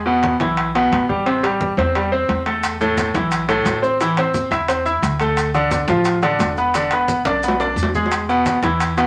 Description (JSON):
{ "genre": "latin, salsa", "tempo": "175 BPM", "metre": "4/4", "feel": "straight", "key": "unclear", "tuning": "A4 = 440 Hz", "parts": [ { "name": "upright bass", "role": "bass", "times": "0.0-9.1 s", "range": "E1 to E2", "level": "-29 LUFS", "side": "equal", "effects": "none" }, { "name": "bright grand piano", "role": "accompaniment", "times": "0.1-9.1 s", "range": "A2 to E5", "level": "-20 LUFS", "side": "equal", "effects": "none" }, { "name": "congas", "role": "percussion", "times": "0.1-9.1 s", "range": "none", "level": "-31 LUFS", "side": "equal", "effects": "none" }, { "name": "timbales", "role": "percussion", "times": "0.2-9.1 s", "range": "none", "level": "-26 LUFS", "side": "equal", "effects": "none" }, { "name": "maracas", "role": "percussion", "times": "2.6-9.1 s", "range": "none", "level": "-38 LUFS", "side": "equal", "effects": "none" } ], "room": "moderate studio reverb, RT60 0.6 s", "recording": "none", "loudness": "-18 LUFS", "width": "mono", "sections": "0.0-9.1 A section", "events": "drum fill 7.3-8.1", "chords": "0.0 E5; 1.3 Am7; 2.6 Esus4; 4.0 Am; 5.4 Dm; 6.7 E7; 8.1 E" }